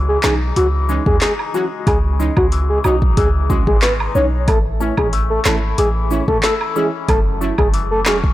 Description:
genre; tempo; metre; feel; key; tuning
dancehall; 92 BPM; 4/4; straight; C# minor; A4 = 440 Hz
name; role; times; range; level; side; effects
electric guitar with an envelope filter; arpeggios; 0.0-8.3 s; F#2 to E4; -25 LUFS; left 8 dB; tremolo
clean 808-style bass; bass; 0.0-8.3 s; E1 to D#2; -19 LUFS; equal; none
soft octave-layered synth lead; melody; 0.1-8.2 s; F#4 to C#5; -19 LUFS; equal; chorus, tremolo, tape echo
synth brass stab; accompaniment; 0.2-8.2 s; E3 to F#4; -25 LUFS; right 3 dB; chorus
afro-pop drum kit; drums; 0.2-8.3 s; handclaps, hi-hat, kick drum, snare drum; -18 LUFS; equal; none
cabasa and woodblock; percussion; 0.2-8.2 s; none; -28 LUFS; right 5 dB; none
room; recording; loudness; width
digital ambience; blown-out, overdriven recording, overdrive; -14 LUFS; side -15 dB against mid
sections
0.0-8.3 A section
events
none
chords
0.0 C#madd9; 4.5 A; 7.1 F#m7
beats
0.56 1.22 | 1.87 2.52 3.17 3.83 | 4.48 5.13 5.78 6.43 | 7.09 7.74

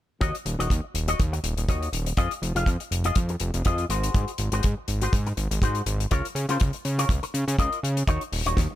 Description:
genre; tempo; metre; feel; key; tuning
nu-disco, nu disco; 122 BPM; 4/4; swing 55% on 16ths; Eb dorian; A4 = 438 Hz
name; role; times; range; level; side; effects
electric guitar with an envelope filter; riff; 0.2-8.7 s; Eb4 to F5; -30 LUFS; left 3 dB; lush chorus, ping-pong delay
fat analog bass; bass; 0.2-8.7 s; Eb1 to Db3; -26 LUFS; equal; sidechain pumping
damped 70s drum kit; drums; 0.2-8.7 s; hi-hat, snare drum; -33 LUFS; left 6 dB; small room ambience
kick drum; drums; 0.2-8.7 s; none; -23 LUFS; equal; small room ambience
room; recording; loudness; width
little or no reverb; none; -23 LUFS; side -14 dB against mid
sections
0.2-8.8 A section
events
none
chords
0.2 Ebm7; 2.2 Fm7; 3.9 Ab7; 6.1 Db6; 8.1 Ebm7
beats
| 0.21 0.70 1.20 1.69 | 2.18 2.67 3.16 3.65 | 4.15 4.64 5.13 5.62 | 6.11 6.61 7.10 7.59 | 8.08 8.57

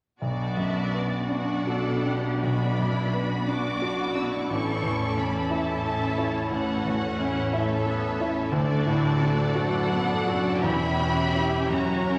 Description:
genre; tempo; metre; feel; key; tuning
classical, romantic movement for piano and orchestra; 52-60 BPM (dotted quarters); 12/8; rubato; B minor; A4 = 437 Hz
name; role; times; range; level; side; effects
clear concert grand piano; melody; 0.2-12.2 s; A1 to A4; -29 LUFS; equal; none
rich studio violin section; melody; 0.2-12.2 s; D5 to E6; -36 LUFS; equal; none
rich studio violin section; second line; 0.2-12.2 s; E4 to E5; -34 LUFS; equal; none
rich studio viola section; accompaniment; 0.2-12.2 s; A3 to G4; -35 LUFS; equal; none
rich studio cello section; bass; 0.2-12.2 s; D2 to B2; -36 LUFS; equal; none
rich studio double bass section; bass; 0.2-12.2 s; E1 to D2; -36 LUFS; equal; none
room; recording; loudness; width
wet scoring stage reverb, RT60 1.6 s; none; -26 LUFS; mono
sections
0.2-12.2 A section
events
none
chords
0.2 Bm; 4.5 A; 8.5 D; 10.6 C#dim/E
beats
| 0.21 1.30 2.43 3.47 | 4.49 5.50 6.50 7.52 | 8.54 9.55 10.63 11.71

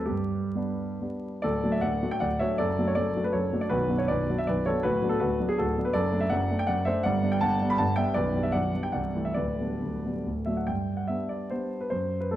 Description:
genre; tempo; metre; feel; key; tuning
classical, romantic triple-time dance for piano with dotted rhythms; 124-172 BPM; 3/4; rubato; D major, G major from 6.0 s; A4 = 439 Hz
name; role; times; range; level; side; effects
warm grand piano; solo; 0.0-12.4 s; B0 to B5; -25 LUFS; equal; none
room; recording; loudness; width
moderate recital hall reverb, RT60 1.8 s; dark, warm production, vinyl crackle; -25 LUFS; side -13 dB against mid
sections
0.0-1.4 A section; 1.4-10.7 B section; 10.7-12.4 A section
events
none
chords
0.1 G; 1.4 D; 2.6 D/F#; 3.7 Bm; 4.9 Bm/D; 6.0 D/F#; 7.0 G; 8.2 G/B; 8.9 Am/C; 9.4 G/D; 10.3 D; 10.7 G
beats
| 0.08 0.55 1.01 | 1.44 1.83 2.22 | 2.60 2.98 3.35 | 3.71 4.09 4.49 | 4.86 5.22 5.59 | 5.95 6.32 6.69 | 7.05 7.42 7.79 | 8.15 8.53 8.94 | 9.36 9.81 10.26 | 10.67 11.09 11.52 | 11.91 12.32

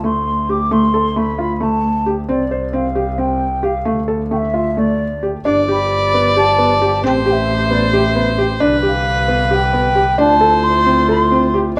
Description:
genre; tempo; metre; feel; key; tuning
contemporary instrumental, chamber music in an uneven meter; 266 BPM (eighths); 7/8; straight; D dorian; A4 = 440 Hz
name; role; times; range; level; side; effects
breathy mellow wooden flute; melody; 0.0-11.6 s; D5 to D6; -21 LUFS; equal; none
felt-muted upright piano; arpeggios; 0.0-11.8 s; A3 to C5; -20 LUFS; equal; none
clear double bass; bass; 0.0-11.8 s; G1 to D2; -23 LUFS; equal; none
clear viola; second line; 5.4-11.8 s; B4 to D5; -21 LUFS; equal; none
mellow woodwind section; sustained chords; 5.4-11.8 s; B2 to G4; -26 LUFS; equal; none
room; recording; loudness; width
moderate recital hall reverb, RT60 1.4 s; none; -16 LUFS; mono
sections
0.0-5.5 A section; 5.5-11.8 B section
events
none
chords
0.0 D5; 2.3 Csus2; 3.9 D5; 5.5 G7; 7.0 Am9; 8.6 Cmaj9; 10.2 Dm9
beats
0.03 0.26 0.48 | 0.70 0.93 1.15 1.38 1.60 1.83 2.05 | 2.28 2.50 2.73 2.95 3.18 3.40 3.63 | 3.85 4.08 4.31 4.54 4.76 5.00 5.22 | 5.46 5.68 5.91 6.14 6.36 6.59 6.81 | 7.04 7.26 7.48 7.71 7.93 8.16 8.38 | 8.61 8.83 9.06 9.28 9.51 9.73 9.96 | 10.18 10.41 10.64 10.87 11.09 11.32 11.55 | 11.78

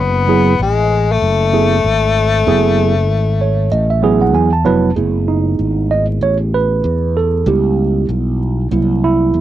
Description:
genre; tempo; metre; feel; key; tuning
hip hop, jazz-hop; 96 BPM; 4/4; swing 60% on 16ths; F# dorian; A4 = 441 Hz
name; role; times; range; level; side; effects
breathy tenor saxophone; melody; 0.0-4.4 s; G#3 to B3; -16 LUFS; left 6 dB; cassette tape
fretless electric bass; bass; 0.0-9.4 s; E#1 to E2; -16 LUFS; equal; lush chorus
tine electric piano; accompaniment; 0.3-9.4 s; F#3 to A5; -15 LUFS; right 4 dB; cassette tape
room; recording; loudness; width
light reverb; home recording on cassette, vinyl crackle; -12 LUFS; side -12 dB against mid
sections
0.0-5.0 A section; 5.0-9.4 B section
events
tine electric piano fill 3.1-5.0; tine electric piano solo 5.0-9.4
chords
0.0 F#m11; 7.5 C#m7b5; 8.7 C7#11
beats
0.59 1.22 1.84 | 2.47 3.09 3.72 4.34 | 4.97 5.59 6.22 6.84 | 7.47 8.09 8.72 9.34

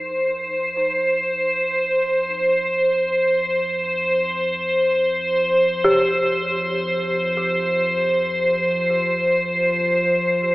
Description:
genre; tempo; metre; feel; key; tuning
dark ambient drone; free time; none; none; unclear; A4 = 440 Hz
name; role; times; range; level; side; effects
dark detuned synth bell; arpeggios; 0.0-10.5 s; Eb4 to Bb4; -24 LUFS; equal; chorus, tape echo
deep rumbling drone; drone; 0.0-10.5 s; F2 to F3; -32 LUFS; equal; built-in reverb, wide subtle chorus
icy glass pad; texture; 0.0-10.5 s; C5; -18 LUFS; equal; chorus, built-in reverb
room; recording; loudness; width
wet cathedral reverb, RT60 6.0 s; in a vast, echoing space, cassette tape, telephone sound; -18 LUFS; side -19 dB against mid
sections
0.0-10.5 A section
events
none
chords
0.0 F5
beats
free time

